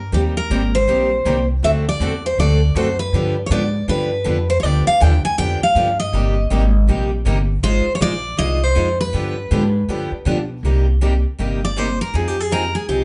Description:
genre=acoustic string swing (jazz manouche)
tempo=160 BPM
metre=4/4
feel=swing 62% on 8ths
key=C minor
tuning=A4 = 440 Hz
part: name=picked steel-string acoustic guitar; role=melody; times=0.0-13.0 s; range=G4 to Ab5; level=-22 LUFS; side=equal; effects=none
part: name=upright bass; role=bass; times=0.0-13.0 s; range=G1 to B2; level=-21 LUFS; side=equal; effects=none
part: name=picked steel-string acoustic guitar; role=accompaniment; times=0.1-13.0 s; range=C3 to C5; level=-27 LUFS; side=equal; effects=none
part: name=picked steel-string acoustic guitar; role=accompaniment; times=0.1-13.0 s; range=C3 to C5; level=-30 LUFS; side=equal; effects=none
room=wet studio reverb, RT60 0.6 s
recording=band playing live in one room, nothing above 10.8 kHz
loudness=-18 LUFS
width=mono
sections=0.0-10.6 A section; 10.6-13.0 B section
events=steel-string acoustic guitar solo 10.6-13.0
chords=0.1 Cm7; 1.6 D7; 3.1 G7; 6.1 Cm7/G; 7.6 Fm7/Ab; 9.1 G7; 10.6 Cm7; 12.1 Fm7

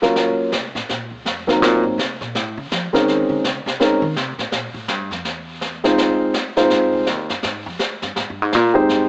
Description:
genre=jazz piano trio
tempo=165 BPM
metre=4/4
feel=swing 63% on 8ths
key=F minor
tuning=A4 = 439 Hz
part: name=warm grand piano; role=melody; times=0.0-9.1 s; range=Gb3 to C5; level=-19 LUFS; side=equal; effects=none
part: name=snare drum and brushed snare drum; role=drums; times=0.0-9.1 s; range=none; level=-26 LUFS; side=equal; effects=none
part: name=upright bass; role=bass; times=0.5-9.1 s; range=C2 to F3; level=-26 LUFS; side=equal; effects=none
room=light reverb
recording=small speaker sound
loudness=-20 LUFS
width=mono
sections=0.0-8.9 A section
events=upright bass solo 0.0-9.1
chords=0.2 Gbmaj7; 1.6 Cm7b5; 2.3 F; 3.1 Bbm11; 4.5 Gm9; 5.2 C; 6.0 Fm7

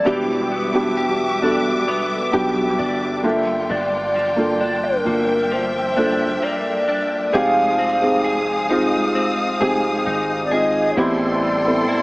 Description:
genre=R&B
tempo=66 BPM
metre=4/4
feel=straight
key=unclear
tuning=A4 = 441 Hz
part: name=hollow clarinet-like synth lead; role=melody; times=0.0-12.0 s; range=Bb4 to F5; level=-21 LUFS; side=equal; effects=chorus, phaser, dub echo
part: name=felt-muted upright piano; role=accompaniment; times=0.0-12.0 s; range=Ab3 to Bb4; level=-21 LUFS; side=right 1 dB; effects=dub echo
part: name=warm studio string section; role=sustained chords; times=0.0-12.0 s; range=G3 to Eb6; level=-25 LUFS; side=left 1 dB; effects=none
part: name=direct-recorded clean electric guitar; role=arpeggios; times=0.0-12.0 s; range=G2 to Ab4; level=-24 LUFS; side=left 1 dB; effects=ensemble chorus, dub echo
part: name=long sustained 808-style bass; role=bass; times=0.0-11.8 s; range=E1 to B1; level=-34 LUFS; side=equal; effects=none
room=moderate echo chamber reverb, RT60 1.5 s, small room ambience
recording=echo-heavy mix, small speaker sound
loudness=-17 LUFS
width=side -23 dB against mid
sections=0.0-12.0 A section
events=none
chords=0.1 Em7; 3.2 Gm7; 7.3 Fm7; 11.0 Am7

